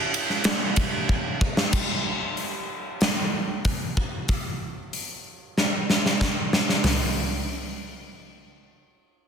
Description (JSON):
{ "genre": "rock", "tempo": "93 BPM", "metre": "4/4", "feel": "straight", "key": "none", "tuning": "none", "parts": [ { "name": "big rock drum kit", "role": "drums", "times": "0.1-7.0 s", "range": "crash cymbal, hi-hat, kick drum, ride cymbal, snare drum, toms", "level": "-23 LUFS", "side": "equal", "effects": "soft clipping on kick" } ], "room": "light reverb", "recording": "dense, heavily limited modern master", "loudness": "-22 LUFS", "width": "side -7 dB against mid", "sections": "0.0-1.7 A section; 1.7-6.9 B section; 6.9-9.3 C section", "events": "drum fill 1.1-1.7, 5.6-6.9", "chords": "none" }